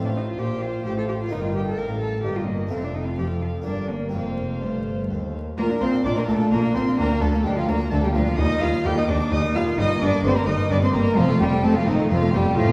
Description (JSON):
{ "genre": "classical, baroque-style concerto movement with solo episodes", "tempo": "128 BPM", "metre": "3/4", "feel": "straight", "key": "Bb major", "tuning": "A4 = 436 Hz", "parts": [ { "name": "dark chamber violin section", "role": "melody", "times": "0.0-12.7 s", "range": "A4 to G6", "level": "-37 LUFS", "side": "equal", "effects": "none" }, { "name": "rich cello", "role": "melody", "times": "0.0-12.7 s", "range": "Eb3 to Bb4", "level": "-27 LUFS", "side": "equal", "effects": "none" }, { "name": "rich chamber violin section", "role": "second line", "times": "0.0-12.7 s", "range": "Eb4 to G5", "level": "-32 LUFS", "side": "equal", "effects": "none" }, { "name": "harpsichord", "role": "accompaniment", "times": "0.0-12.7 s", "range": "D2 to Eb5", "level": "-34 LUFS", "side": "equal", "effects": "none" }, { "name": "warm chamber viola section", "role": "accompaniment", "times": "0.0-12.7 s", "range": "G3 to C5", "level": "-32 LUFS", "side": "equal", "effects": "none" }, { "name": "rich chamber double bass section", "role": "bass", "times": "0.0-12.6 s", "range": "F1 to F2", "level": "-30 LUFS", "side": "equal", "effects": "none" }, { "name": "warm chamber cello section", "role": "bass", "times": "0.0-12.6 s", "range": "D2 to F3", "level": "-30 LUFS", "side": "equal", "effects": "none" } ], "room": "wet recital hall reverb, RT60 1.4 s", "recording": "heard from further back in the room, vinyl crackle", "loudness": "-22 LUFS", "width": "mono", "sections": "0.0-5.6 A section; 5.6-12.7 B section", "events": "none", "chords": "0.0 F/A; 1.3 Eb/G; 2.7 F; 3.7 Gm; 4.1 F; 5.6 Bb; 7.0 Bb/D; 8.4 Eb; 9.8 Eb/G; 11.2 F", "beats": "0.38 0.85 | 1.32 1.78 2.25 | 2.72 3.19 3.66 | 4.14 4.62 5.10 | 5.58 6.05 6.52 | 6.98 7.45 7.92 | 8.38 8.85 9.32 | 9.78 10.24 10.71 | 11.17 11.64 12.10 | 12.57" }